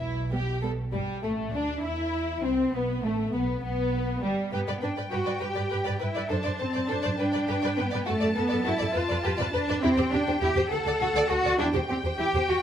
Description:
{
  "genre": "quick classical-period movement for string orchestra",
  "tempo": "68 BPM (dotted quarters)",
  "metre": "6/8",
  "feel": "straight",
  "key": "unclear",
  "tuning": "A4 = 440 Hz",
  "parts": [
    { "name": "warm studio violin section", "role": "second line", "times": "0.0-12.6 s", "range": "G3 to D5", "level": "-32 LUFS", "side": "left 2 dB", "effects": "none" },
    { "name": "dark studio double bass section", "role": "bass", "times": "0.0-12.6 s", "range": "G1 to G2", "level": "-32 LUFS", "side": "right 2 dB", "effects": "none" },
    { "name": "warm studio cello section", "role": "bass", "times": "0.0-12.6 s", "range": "B2 to A4", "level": "-29 LUFS", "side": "right 1 dB", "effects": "none" },
    { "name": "rich studio viola section", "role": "accompaniment", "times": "0.3-12.6 s", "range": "G3 to C5", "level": "-33 LUFS", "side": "right 2 dB", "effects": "none" },
    { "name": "warm studio violin section", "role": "melody", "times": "0.9-12.6 s", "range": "G3 to A5", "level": "-34 LUFS", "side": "left 4 dB", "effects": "none" }
  ],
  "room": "moderate recital hall reverb, RT60 1.6 s",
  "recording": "none",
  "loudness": "-25 LUFS",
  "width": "side -9 dB against mid",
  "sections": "0.9-12.6 A section",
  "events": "none",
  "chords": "0.0 Em; 0.9 N.C.; 2.7 Asus2; 3.6 G; 6.3 D7/F#; 7.2 G; 8.1 D/F#; 9.0 G7/F (rootless); 9.8 C/E; 10.7 D; 11.6 C/E (rootless)"
}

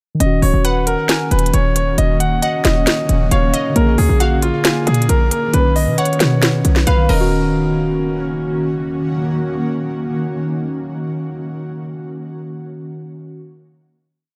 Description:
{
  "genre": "hip hop, trap",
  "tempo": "135 BPM",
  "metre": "4/4",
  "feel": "half-time",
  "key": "Eb minor",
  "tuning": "A4 = 440 Hz",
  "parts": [
    { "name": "muted felt-like synth keys", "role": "accompaniment", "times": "0.1-13.4 s", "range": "D3 to B4", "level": "-23 LUFS", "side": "equal", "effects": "chorus, low-pass filter" },
    { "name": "bright concert grand piano", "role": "melody", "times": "0.2-8.6 s", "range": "F4 to Gb5", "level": "-23 LUFS", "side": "equal", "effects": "low-pass filter" },
    { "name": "granular cloud pad", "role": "sustained chords", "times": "1.3-11.6 s", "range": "Eb3 to D5", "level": "-28 LUFS", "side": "equal", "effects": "built-in reverb" },
    { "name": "short 808-style bass", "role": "bass", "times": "0.2-9.1 s", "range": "Db1 to B2", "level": "-18 LUFS", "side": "equal", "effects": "none" },
    { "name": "trap drum kit", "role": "drums", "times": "0.2-7.2 s", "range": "crash cymbal, hi-hat, snare drum", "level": "-22 LUFS", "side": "equal", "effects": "none" },
    { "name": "glassy wavetable pluck", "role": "second line", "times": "0.6-8.6 s", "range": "Eb5 to Ab5", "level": "-29 LUFS", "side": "equal", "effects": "chorus, digital delay" }
  ],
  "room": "light reverb",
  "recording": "none",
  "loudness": "-16 LUFS",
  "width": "mono",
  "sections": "0.2-7.3 hook; 7.3-10.9 final hit",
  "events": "none",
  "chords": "0.2 Ebm7; 3.8 Bb7; 5.5 Badd9; 7.1 Ebm7"
}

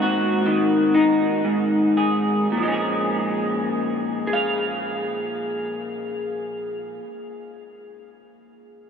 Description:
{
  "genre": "folk",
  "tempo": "34-45 BPM (dotted quarters)",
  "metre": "6/8",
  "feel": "straight",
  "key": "Bb minor",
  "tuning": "A4 = 440 Hz",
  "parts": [
    { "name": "electric guitar through a small old amp", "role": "accompaniment", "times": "0.0-7.5 s", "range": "Ab2 to F5", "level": "-20 LUFS", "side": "left 1 dB", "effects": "analog chorus" }
  ],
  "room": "wet huge ambient reverb, RT60 7.8 s",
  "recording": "dreamy mix soaked in reverb",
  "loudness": "-20 LUFS",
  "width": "side -7 dB against mid",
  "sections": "0.0-2.5 A section; 2.5-6.0 B section",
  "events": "slowing down 0.0-2.5",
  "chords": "0.0 Ab7; 2.5 Bbm7"
}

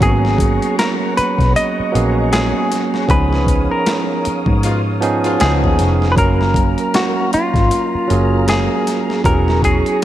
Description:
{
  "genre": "R&B, neo-soul",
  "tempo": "78 BPM",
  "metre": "4/4",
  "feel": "swing 58% on 16ths",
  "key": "F# major",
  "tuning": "A4 = 442 Hz",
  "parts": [
    { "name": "semi-hollow electric guitar", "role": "melody", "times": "0.0-10.0 s", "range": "E#4 to D#5", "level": "-19 LUFS", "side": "left 1 dB", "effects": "tremolo, slapback echo" },
    { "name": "barky tine electric piano", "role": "accompaniment", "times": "0.0-10.0 s", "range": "E#3 to E#5", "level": "-18 LUFS", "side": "right 4 dB", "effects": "overdrive, slapback echo" },
    { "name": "tonewheel organ", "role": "sustained chords", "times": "0.0-10.0 s", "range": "G#4 to E#6", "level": "-27 LUFS", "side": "left 1 dB", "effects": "slow rotary speaker, chorus vibrato" },
    { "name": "vintage muted picked electric bass", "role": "bass", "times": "0.0-9.8 s", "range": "E1 to G#2", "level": "-17 LUFS", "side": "left 1 dB", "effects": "none" },
    { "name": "boom bap sampler-style drum kit", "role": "drums", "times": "0.0-10.0 s", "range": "hi-hat, kick drum, snare drum", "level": "-20 LUFS", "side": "left 1 dB", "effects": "overdrive" },
    { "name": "clear horn section", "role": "stabs", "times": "4.6-5.5 s", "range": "B2 to E#4", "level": "-26 LUFS", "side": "left 3 dB", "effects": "none" }
  ],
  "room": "moderate lush hall reverb, RT60 2.8 s",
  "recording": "big arena sound, faint mains hum",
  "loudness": "-13 LUFS",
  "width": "side -12 dB against mid",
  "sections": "0.0-10.0 A section",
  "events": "band accent 3.1-6.2",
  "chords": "0.0 G#m11; 3.1 C#9; 6.2 F#maj7; 9.2 E69"
}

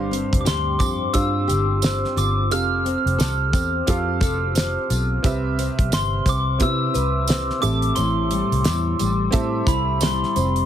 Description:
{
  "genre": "indie pop, bedroom pop",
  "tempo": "88 BPM",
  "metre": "4/4",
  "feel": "swing 60% on 16ths",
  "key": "unclear",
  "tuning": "A4 = 442 Hz",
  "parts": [
    { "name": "nylon-string guitar", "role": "accompaniment", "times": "0.0-10.7 s", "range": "G2 to B4", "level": "-26 LUFS", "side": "left 4 dB", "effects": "analog chorus, vibrato effect" },
    { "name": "warm upright piano", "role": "accompaniment", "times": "0.0-10.7 s", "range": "C4 to F5", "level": "-29 LUFS", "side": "right 6 dB", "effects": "cassette tape, plate reverb" },
    { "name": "vintage muted fingered electric bass", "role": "bass", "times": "0.0-10.6 s", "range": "F1 to C3", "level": "-24 LUFS", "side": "equal", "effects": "none" },
    { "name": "damped 70s drum kit", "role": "drums", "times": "0.1-10.7 s", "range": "hi-hat, kick drum, snare drum", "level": "-22 LUFS", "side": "equal", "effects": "none" },
    { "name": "glockenspiel with hard plastic mallets", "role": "melody", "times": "0.4-10.7 s", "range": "B5 to F6", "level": "-24 LUFS", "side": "equal", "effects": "wide subtle chorus, plate reverb" },
    { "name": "tambourine", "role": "percussion", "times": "0.5-10.6 s", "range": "none", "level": "-34 LUFS", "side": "right 7 dB", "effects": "none" }
  ],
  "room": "light reverb",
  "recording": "heavily compressed radio sound, multiband compression",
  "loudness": "-18 LUFS",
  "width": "side -10 dB against mid",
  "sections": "0.0-10.7 A section",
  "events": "none",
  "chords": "0.0 G7sus4; 2.5 Fadd9; 5.2 Cmaj7; 7.6 Am7"
}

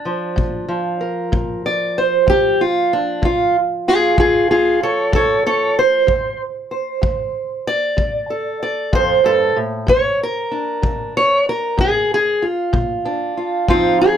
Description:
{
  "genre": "acoustic country blues, solo or duo",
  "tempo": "63 BPM (dotted quarters)",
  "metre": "12/8",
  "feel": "straight",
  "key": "unclear",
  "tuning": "A4 = 440 Hz",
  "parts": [
    { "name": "fingerpicked steel-string acoustic guitar", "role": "melody", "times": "0.0-14.2 s", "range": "F2 to D5", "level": "-15 LUFS", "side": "right 1 dB", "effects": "none" },
    { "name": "kick drum", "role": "drums", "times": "0.4-13.8 s", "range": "none", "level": "-21 LUFS", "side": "left 1 dB", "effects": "none" }
  ],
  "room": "moderate studio reverb, RT60 0.6 s",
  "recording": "none",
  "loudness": "-15 LUFS",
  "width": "side -9 dB against mid",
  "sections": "0.0-14.2 A section",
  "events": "steel-string acoustic guitar solo 0.0-14.2",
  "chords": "0.0 Bb; 2.3 F; 9.9 Bb"
}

